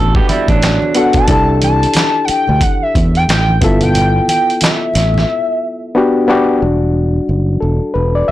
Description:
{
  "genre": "R&B, neo-soul",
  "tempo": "90 BPM",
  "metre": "4/4",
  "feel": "swing 60% on 16ths",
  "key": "E minor",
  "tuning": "A4 = 440 Hz",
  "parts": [
    { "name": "electric guitar through a small old amp", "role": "second line", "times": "0.0-1.3 s", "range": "F#3 to A4", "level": "-17 LUFS", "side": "right 4 dB", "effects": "plate reverb" },
    { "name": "barky reed electric piano", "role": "accompaniment", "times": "0.0-8.3 s", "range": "G3 to E5", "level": "-16 LUFS", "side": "left 2 dB", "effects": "plate reverb" },
    { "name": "fingered electric bass", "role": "bass", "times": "0.0-8.3 s", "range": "E1 to E2", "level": "-14 LUFS", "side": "equal", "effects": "none" },
    { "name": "dusty soul sampler-style drum kit", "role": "drums", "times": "0.1-5.2 s", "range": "handclaps, hi-hat, kick drum, snare drum", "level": "-16 LUFS", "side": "equal", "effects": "none" },
    { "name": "congas", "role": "percussion", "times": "0.3-5.3 s", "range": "none", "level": "-26 LUFS", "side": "right 3 dB", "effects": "none" },
    { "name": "hollow square lead", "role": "melody", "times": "1.0-6.2 s", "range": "E5 to A5", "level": "-16 LUFS", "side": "left 1 dB", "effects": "chorus, phaser, slapback echo, plate reverb" }
  ],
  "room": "light reverb",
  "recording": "blown-out, overdriven recording, overdrive",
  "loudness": "-11 LUFS",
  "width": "side -14 dB against mid",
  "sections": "0.0-6.6 A section; 6.6-8.3 B section",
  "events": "silent gap 5.3-6.6; reed electric piano solo 6.6-8.3",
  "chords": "0.0 Gmaj9; 1.3 C69; 3.6 G13; 5.9 Em7"
}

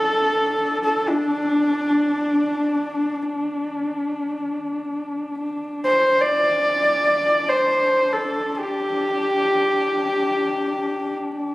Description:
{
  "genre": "mongolian traditional, Mongolian folk",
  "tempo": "free time",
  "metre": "none",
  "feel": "none",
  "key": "unclear",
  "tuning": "A4 = 440 Hz",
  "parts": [
    { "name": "rich horsehead fiddle", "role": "melody", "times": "0.0-11.2 s", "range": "D4 to D5", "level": "-19 LUFS", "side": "equal", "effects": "none" },
    { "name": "dark horsehead fiddle", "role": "drone", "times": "0.0-11.5 s", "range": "D4", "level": "-27 LUFS", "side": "left 1 dB", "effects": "none" }
  ],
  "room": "moderate concert hall reverb, RT60 2.4 s",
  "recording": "recorded on a phone in the room, club ambience, compression",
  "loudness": "-19 LUFS",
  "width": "side -18 dB against mid",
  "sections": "0.0-5.4 A section; 5.4-11.5 A section",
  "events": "none",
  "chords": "none"
}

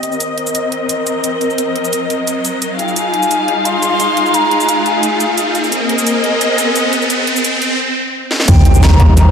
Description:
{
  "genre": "liquid drum and bass",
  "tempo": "174 BPM",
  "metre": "4/4",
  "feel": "straight",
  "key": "C minor",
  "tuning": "A4 = 443 Hz",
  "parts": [
    { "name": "dark studio string section", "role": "sustained chords", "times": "0.0-9.3 s", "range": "G3 to F5", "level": "-16 LUFS", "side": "left 1 dB", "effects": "sidechain pumping, low-pass filter" },
    { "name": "drum and bass drum kit", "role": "drums", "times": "0.0-9.2 s", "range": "crash cymbal, hi-hat, shaker, snare drum", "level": "-20 LUFS", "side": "right 1 dB", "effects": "overdrive" },
    { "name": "riser and impact", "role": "sound effects", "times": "0.5-9.3 s", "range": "none", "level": "-17 LUFS", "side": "equal", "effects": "none" },
    { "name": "breathy concert flute", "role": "melody", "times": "2.8-5.5, 8.5-9.3 s", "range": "G5 to C6", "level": "-18 LUFS", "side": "equal", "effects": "analog delay" },
    { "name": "swelling detuned saw bass", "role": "bass", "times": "8.5-9.3 s", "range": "Eb2", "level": "-9 LUFS", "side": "equal", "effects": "none" },
    { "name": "electronic kick drum", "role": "drums", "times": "8.5-9.1 s", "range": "none", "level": "-10 LUFS", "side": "equal", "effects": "overdrive" }
  ],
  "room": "wet lush hall reverb, RT60 1.7 s",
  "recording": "dreamy mix soaked in reverb, high-pass filter",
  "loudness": "-12 LUFS",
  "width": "side -7 dB against mid",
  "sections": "0.0-8.5 A section",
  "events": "build-up 0.0-8.5; filter sweep on string section 0.0-8.5; filter sweep 0.0-8.5; riser 0.5-7.8; drum fill 8.3; impact 8.5-9.3",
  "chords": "0.0 Cm7; 2.8 Fm7; 5.7 Bb9sus4; 8.5 Eb6"
}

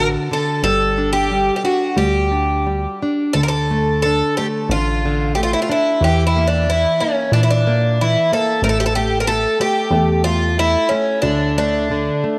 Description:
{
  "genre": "fado-style ballad",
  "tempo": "91 BPM",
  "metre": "4/4",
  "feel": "rubato",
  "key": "D harmonic minor from 3.4 s",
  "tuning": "A4 = 439 Hz",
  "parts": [
    { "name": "picked twelve-string acoustic guitar", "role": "melody", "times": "0.0-12.4 s", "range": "C#4 to Bb4", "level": "-20 LUFS", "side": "equal", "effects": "none" },
    { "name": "nylon-string guitar", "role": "accompaniment", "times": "0.0-12.4 s", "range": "D3 to F#4", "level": "-24 LUFS", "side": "equal", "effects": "none" },
    { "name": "plucky analog bass", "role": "bass", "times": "0.0-12.1 s", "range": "G1 to Bb2", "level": "-22 LUFS", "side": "equal", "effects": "none" }
  ],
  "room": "moderate plate reverb, RT60 3.1 s",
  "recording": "none",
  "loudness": "-17 LUFS",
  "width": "mono",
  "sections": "0.0-3.4 A section; 3.4-12.4 B section",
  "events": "none",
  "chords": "0.0 D; 0.6 G5; 3.4 Dm; 6.0 E7(b5, no3); 8.6 A5; 11.2 D5"
}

